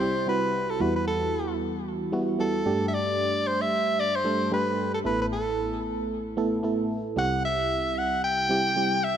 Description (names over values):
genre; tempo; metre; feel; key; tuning
pop; 113 BPM; 4/4; swing 55% on 16ths; unclear; A4 = 440 Hz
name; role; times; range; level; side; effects
clear soprano saxophone; melody; 0.0-9.2 s; A4 to G5; -26 LUFS; equal; ping-pong delay
FM electric piano with tremolo; accompaniment; 0.0-9.2 s; A1 to A4; -27 LUFS; right 1 dB; none
room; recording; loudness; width
moderate lush hall reverb, RT60 2.3 s; none; -24 LUFS; side -9 dB against mid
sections
0.0-9.2 A section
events
none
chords
0.0 C; 0.8 Emadd9; 2.7 Gsus2; 5.1 Asus2; 7.2 C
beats
0.27 | 0.81 1.34 1.87 2.40 | 2.93 3.46 3.99 4.52 | 5.05 5.58 6.11 6.64 | 7.18 7.71 8.24 8.77